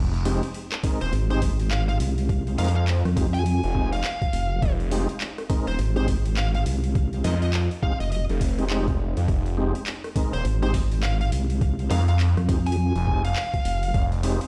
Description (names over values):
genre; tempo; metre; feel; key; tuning
glitch hop; 103 BPM; 4/4; swing 61% on 16ths; F minor; A4 = 440 Hz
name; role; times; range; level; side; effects
phased detuned saw bass; bass; 0.0-14.4 s; Eb1 to F2; -25 LUFS; equal; phaser, overdrive
drum and bass drum kit; drums; 0.1-14.5 s; handclaps, hi-hat, rim click; -37 LUFS; equal; none
tonewheel organ; stabs; 0.3-14.4 s; Ab3 to Bb4; -34 LUFS; equal; chorus vibrato, stopped rotary speaker, sidechain pumping, delay
electronic kick drum; drums; 0.8-14.1 s; none; -26 LUFS; equal; overdrive
smooth overdriven lead guitar; melody; 1.0-14.1 s; C5 to Ab5; -35 LUFS; equal; delay
vowel-sweep wobble bass; bass; 1.1-13.9 s; F1 to F2; -26 LUFS; equal; chorus, tube saturation
room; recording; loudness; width
little or no reverb; played on a big sound system in a bare room, large studio reverb; -24 LUFS; mono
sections
0.0-14.5 A section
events
none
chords
0.0 Fm9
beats
0.55 1.13 1.71 | 2.29 2.88 3.46 4.04 | 4.62 5.21 5.79 6.37 | 6.95 7.54 8.12 8.70 | 9.28 9.87 10.45 11.03 | 11.61 12.20 12.78 13.36 | 13.94